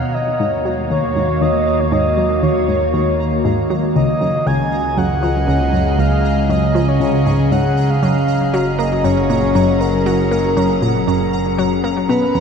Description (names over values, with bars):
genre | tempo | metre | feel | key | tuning
ambient, sequencer-driven space music | 118 BPM | 4/4 | straight | unclear | A4 = 440 Hz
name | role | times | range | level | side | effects
breathy flute-like synth lead | melody | 0.0-12.4 s | Bb4 to Ab5 | -20 LUFS | equal | chorus, shimmer reverb, tape echo
evolving wavetable pad | sustained chords | 0.0-12.4 s | B2 to Bb5 | -18 LUFS | left 1 dB | chorus, built-in reverb, shimmer reverb
analog drone | bass | 0.6-12.4 s | Gb1 to Eb2 | -22 LUFS | equal | chorus
pulsing gated texture | texture | 0.0-12.4 s | Bb5 | -31 LUFS | right 6 dB | chorus, built-in reverb, shimmer reverb
analog pluck | riff | 0.4-12.4 s | Db2 to Bb3 | -19 LUFS | equal | chorus, shimmer reverb, tape echo
room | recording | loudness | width
wet cathedral reverb, RT60 6.6 s | in a vast, echoing space | -14 LUFS | side -6 dB against mid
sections
0.0-12.4 A section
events
fade-in on synth texture 0.0-12.4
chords
0.0 Ebm7; 4.0 Dbsus2; 8.0 Gbadd9